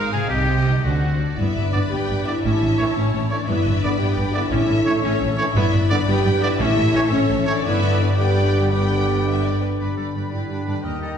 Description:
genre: cinematic, heroic adventure film score.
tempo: 114 BPM (dotted quarters).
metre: 6/8.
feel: straight.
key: G lydian.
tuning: A4 = 440 Hz.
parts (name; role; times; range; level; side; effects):
dark studio violin section; melody; 0.0-11.2 s; C5 to B5; -30 LUFS; left 4 dB; none.
clear oboe; second line; 0.0-1.4, 9.8-11.1 s; F#4 to B4; -28 LUFS; equal; none.
warm symphonic violin section; second line; 0.0-11.2 s; F#4 to B5; -32 LUFS; left 2 dB; none.
rich symphonic viola section; accompaniment; 0.0-11.2 s; G3 to B4; -30 LUFS; right 2 dB; none.
dark French horn section; sustained chords; 0.0-11.2 s; Eb3 to G4; -24 LUFS; equal; none.
concert harp; arpeggios; 0.0-11.2 s; G2 to Eb5; -27 LUFS; left 4 dB; none.
rich symphonic double bass section; bass; 0.0-11.0 s; G1 to Eb2; -25 LUFS; right 1 dB; none.
warm symphonic cello section; bass; 0.0-11.1 s; Eb2 to D3; -24 LUFS; right 1 dB; none.
warm trombone section; sustained chords; 1.7-11.2 s; D3 to B3; -31 LUFS; right 2 dB; none.
clear trumpet; stabs; 1.7-11.2 s; B4 to Eb5; -28 LUFS; right 2 dB; none.
clear clarinet; second line; 9.8-11.2 s; D4 to E4; -32 LUFS; right 1 dB; none.
mellow hollow concert flute; second line; 9.8-11.2 s; G5 to B5; -37 LUFS; equal; none.
room: wet scoring stage reverb, RT60 1.7 s.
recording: heard from further back in the room, nothing above 10.7 kHz.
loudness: -17 LUFS.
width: side -8 dB against mid.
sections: 0.0-1.4 A section; 1.4-9.8 B section; 9.8-11.2 C section.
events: none.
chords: 0.3 Cm; 0.8 D7; 1.4 G; 2.4 A; 3.5 G; 4.5 A; 5.6 G; 6.6 A; 7.6 G.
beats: | 0.30 0.84 | 1.38 1.91 | 2.43 2.95 | 3.48 4.00 | 4.51 5.04 | 5.56 6.08 | 6.60 7.12 | 7.65 8.18 | 8.72 9.27 | 9.81 10.33 | 10.86.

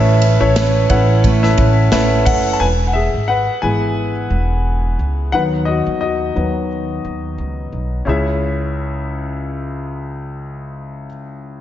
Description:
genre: piano-driven pop.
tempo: 88 BPM.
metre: 4/4.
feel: swing 56% on 16ths.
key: C# minor.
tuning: A4 = 440 Hz.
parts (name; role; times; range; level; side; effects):
clear concert grand piano; accompaniment; 0.0-11.6 s; C#2 to A5; -19 LUFS; left 3 dB; slapback echo.
picked steel-string acoustic guitar; riff; 0.0-3.1 s; E3 to B4; -20 LUFS; right 10 dB; slapback echo.
upright bass; bass; 0.0-11.1 s; E1 to D#2; -18 LUFS; equal; none.
modern studio drum kit; drums; 0.2-2.4 s; hi-hat, kick drum, ride cymbal, snare drum; -20 LUFS; equal; none.
room: light reverb.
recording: nothing above 7.6 kHz.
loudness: -14 LUFS.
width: side -12 dB against mid.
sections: 0.0-2.6 A section; 2.6-8.1 B section; 8.1-10.8 C section.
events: grand piano solo 2.6-8.1.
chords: 0.0 Aadd9; 2.6 E; 5.3 B/D#; 8.1 C#m.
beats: 0.56 1.24 1.92 | 2.60 3.29 3.97 4.65 | 5.33 6.02 6.70 7.38 | 8.06 8.75 9.43 10.11.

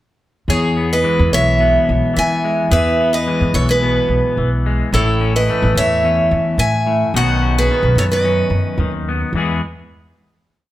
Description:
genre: highlife guitar band.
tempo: 108 BPM.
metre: 4/4.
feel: straight.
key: E major.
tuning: A4 = 440 Hz.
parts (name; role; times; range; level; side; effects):
picked steel-string acoustic guitar; melody; 0.5-8.9 s; G#4 to G#5; -16 LUFS; right 2 dB; none.
clean electric guitar; accompaniment; 0.5-9.6 s; E2 to G#4; -19 LUFS; left 3 dB; vibrato effect.
upright bass; bass; 0.5-9.6 s; A1 to E3; -18 LUFS; equal; none.
room: moderate large studio reverb, RT60 1.2 s.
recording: band playing live in one room.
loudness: -13 LUFS.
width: side -14 dB against mid.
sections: 0.5-9.3 groove; 9.3-10.7 final chord.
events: none.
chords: 0.5 E; 4.9 A; 7.1 Badd9; 9.3 E.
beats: | 0.48 1.03 1.59 2.15 | 2.70 3.26 3.81 4.37 | 4.92 5.47 6.03 6.58 | 7.13 7.68 8.24 8.79 | 9.34.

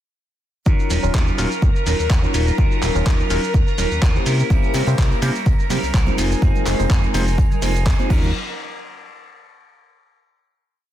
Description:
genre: filtered disco house.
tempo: 125 BPM.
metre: 4/4.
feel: swing 54% on 16ths.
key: Eb dorian.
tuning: A4 = 442 Hz.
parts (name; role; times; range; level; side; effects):
bright tine electric piano; accompaniment; 0.7-8.3 s; Gb3 to C5; -25 LUFS; equal; phaser, vintage 12-bit sampler grit, sidechain pumping.
phased string machine; sustained chords; 0.9-8.1 s; Bb4 to Bb5; -29 LUFS; left 2 dB; ensemble chorus, phaser, sidechain pumping.
electric guitar with an envelope filter; riff; 0.7-8.3 s; Gb3 to Bb4; -28 LUFS; right 3 dB; spring reverb, sidechain pumping.
fat analog bass; bass; 0.7-8.3 s; Eb1 to C3; -21 LUFS; equal; sidechain pumping.
dusty soul sampler-style drum kit; drums; 0.7-8.2 s; crash cymbal, handclaps, hi-hat, shaker; -28 LUFS; equal; overdrive, sidechain pumping on perc, sidechain pumping on hats, sidechain pumping on cymbals.
electronic kick drum; drums; 0.7-8.2 s; none; -17 LUFS; equal; none.
congas and tambourine; percussion; 4.5-8.3 s; none; -32 LUFS; right 6 dB; sidechain pumping on perc.
room: little or no reverb.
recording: dense, heavily limited modern master.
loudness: -16 LUFS.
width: side -12 dB against mid.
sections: 0.7-8.3 drop; 8.3-10.3 final hit.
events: drop 0.7-8.3.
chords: 0.7 Ebm9; 4.3 C7b9; 6.2 Fm7; 8.1 Ebm9; 8.3 N.C..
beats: | 0.66 1.14 1.62 2.10 | 2.58 3.06 3.54 4.02 | 4.50 4.98 5.46 5.94 | 6.42 6.90 7.38 7.86.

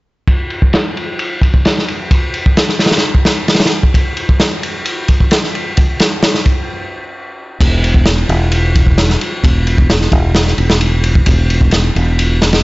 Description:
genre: breakbeat, breaks.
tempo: 131 BPM.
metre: 4/4.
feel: straight.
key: unclear.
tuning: A4 = 440 Hz.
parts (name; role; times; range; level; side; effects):
crunchy breakbeat drum kit; drums; 0.3-12.6 s; crash cymbal, kick drum, ride cymbal, snare drum; -12 LUFS; equal; low-pass filter on kick, low-pass filter on cymbals, low-pass filter on snare, low-pass filter on room.
fingered electric bass; bass; 7.6-12.6 s; E1; -13 LUFS; equal; none.
room: little or no reverb.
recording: nothing above 7.8 kHz.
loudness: -10 LUFS.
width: side -21 dB against mid.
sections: 0.3-7.6 A section; 7.6-12.6 B section.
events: stop 6.7-7.6.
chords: none.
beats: | 0.28 0.74 1.20 1.65 | 2.11 2.57 3.03 3.48 | 3.94 4.40 4.86 5.32 | 5.78 6.23 6.69 7.15 | 7.61 8.06 8.52 8.98 | 9.44 9.90 10.36 10.81 | 11.27 11.73 12.19.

